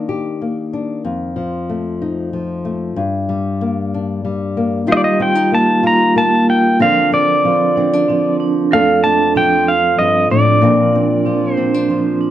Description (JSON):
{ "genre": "acoustic folk-pop ballad", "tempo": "94 BPM", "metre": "3/4", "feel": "straight", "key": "Bb major", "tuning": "A4 = 440 Hz", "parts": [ { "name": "nylon-string guitar", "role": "accompaniment", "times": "0.0-12.3 s", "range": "F2 to A4", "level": "-18 LUFS", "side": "left 3 dB", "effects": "none" }, { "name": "pedal steel guitar", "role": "melody", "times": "4.9-12.2 s", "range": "D5 to Bb5", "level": "-14 LUFS", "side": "right 1 dB", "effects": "plate reverb" }, { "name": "vibraphone with hard mallets", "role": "arpeggios", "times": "4.9-12.3 s", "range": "F3 to Bb4", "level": "-17 LUFS", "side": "right 5 dB", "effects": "none" } ], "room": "wet studio ambience, RT60 0.5 s", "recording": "dark, warm production, nothing above 11.0 kHz", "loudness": "-13 LUFS", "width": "side -12 dB against mid", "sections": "0.0-4.9 A section; 4.9-12.3 B section", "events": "none", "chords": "0.0 Ebmaj7; 1.1 F7; 3.0 Gm; 4.9 Ebadd9; 6.8 Bbadd9/D; 8.7 F6; 10.6 Bbadd9", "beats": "0.41 | 1.05 1.69 2.33 | 2.97 3.61 4.25 | 4.89 5.53 6.17 | 6.80 7.44 8.08 | 8.71 9.35 9.99 | 10.62 11.26 11.90" }